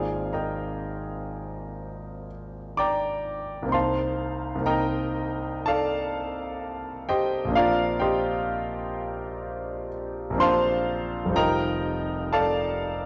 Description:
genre	classical, impressionist solo piano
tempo	57-67 BPM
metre	4/4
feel	rubato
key	Bb major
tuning	A4 = 440 Hz
part	clear concert grand piano	solo	0.0-13.1 s	F1 to D6	-27 LUFS	equal	none
room	moderate recital hall reverb, RT60 1.3 s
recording	dark, warm production, nothing above 7.5 kHz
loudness	-27 LUFS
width	mono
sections	0.0-13.1 A section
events	none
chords	0.0 Ab69; 3.7 Cm7; 7.6 Bb69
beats	0.85 1.83 2.80 | 3.75 4.69 5.68 6.65 | 7.56 8.49 9.44 10.40 | 11.37 12.33

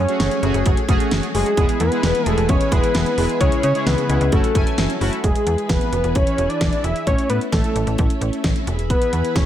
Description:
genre	synth-pop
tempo	131 BPM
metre	4/4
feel	straight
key	unclear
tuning	A4 = 438 Hz
part	fat analog lead	melody	0.0-9.5 s	G#4 to E5	-21 LUFS	left 1 dB	chorus, digital delay
part	analog synth brass	accompaniment	0.0-5.2 s	G#3 to G#5	-24 LUFS	right 1 dB	chorus
part	ensemble organ-string	sustained chords	0.0-9.5 s	C#3 to B4	-26 LUFS	left 1 dB	ensemble chorus
part	slap-like FM bass	bass	0.0-9.5 s	E1 to C#3	-22 LUFS	equal	none
part	pop drum kit	drums	0.1-9.5 s	hi-hat, kick drum, snare drum	-20 LUFS	equal	gated reverb
room	light reverb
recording	none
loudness	-16 LUFS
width	side -11 dB against mid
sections	0.0-5.2 A section; 5.2-9.5 B section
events	none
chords	0.0 F#madd9; 1.6 E; 3.4 C#m; 4.3 F#m7; 5.2 E; 7.1 A; 8.7 E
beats	0.20 0.66 1.11 | 1.57 2.03 2.49 2.95 | 3.40 3.86 4.32 4.78 | 5.24 5.70 6.15 6.61 | 7.07 7.53 7.99 8.44 | 8.90 9.36

